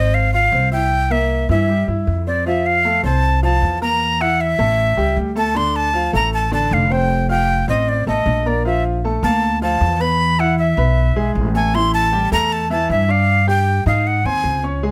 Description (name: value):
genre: Afro-Cuban jazz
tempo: 155 BPM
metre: 4/4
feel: straight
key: F major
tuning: A4 = 440 Hz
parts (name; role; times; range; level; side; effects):
- breathy bright jazz flute; melody; 0.0-14.6 s; D5 to C6; -20 LUFS; equal; none
- clear baby grand piano; accompaniment; 0.0-14.9 s; D3 to G6; -25 LUFS; equal; none
- upright bass; bass; 0.0-14.9 s; F1 to Ab2; -21 LUFS; equal; none
room: little or no reverb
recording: close, detailed microphones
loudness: -17 LUFS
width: mono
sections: 0.0-2.5 A section; 2.5-14.8 B section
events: none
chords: 0.0 Dbmaj7 (rootless); 0.9 C7; 2.5 Fmaj7; 4.0 Gb7#9; 4.8 A7; 5.6 Dm7; 7.1 F9; 8.6 Bbmaj7#11; 10.2 E; 11.7 A5; 13.3 G5; 14.1 Ab